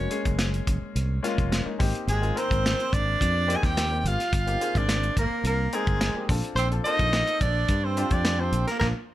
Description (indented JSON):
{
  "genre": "electric jazz fusion",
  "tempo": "107 BPM",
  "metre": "4/4",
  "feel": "straight",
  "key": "unclear",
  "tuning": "A4 = 440 Hz",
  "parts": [
    { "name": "warm soprano saxophone", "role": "melody", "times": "0.0-8.9 s", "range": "Ab4 to Ab5", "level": "-28 LUFS", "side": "equal", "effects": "none" },
    { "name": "breathy tenor saxophone", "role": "second line", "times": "0.0-8.9 s", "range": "Ab3 to Ab4", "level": "-32 LUFS", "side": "right 5 dB", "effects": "none" },
    { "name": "warm baby grand piano", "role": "accompaniment", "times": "0.0-8.9 s", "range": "Eb3 to Bb4", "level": "-32 LUFS", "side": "left 4 dB", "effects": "none" },
    { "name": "fretless electric bass", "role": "bass", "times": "0.0-8.9 s", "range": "F1 to G2", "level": "-27 LUFS", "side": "equal", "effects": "none" },
    { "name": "tight funk drum kit", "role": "drums", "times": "0.1-8.9 s", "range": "hi-hat, kick drum, snare drum", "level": "-27 LUFS", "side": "equal", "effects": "none" }
  ],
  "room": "light reverb",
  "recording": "none",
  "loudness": "-22 LUFS",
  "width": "side -14 dB against mid",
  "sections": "0.0-9.1 A section",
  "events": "band accent 8.8-9.1",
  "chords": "0.0 Gbmaj9; 1.8 Abmaj9; 6.3 Bbmaj9"
}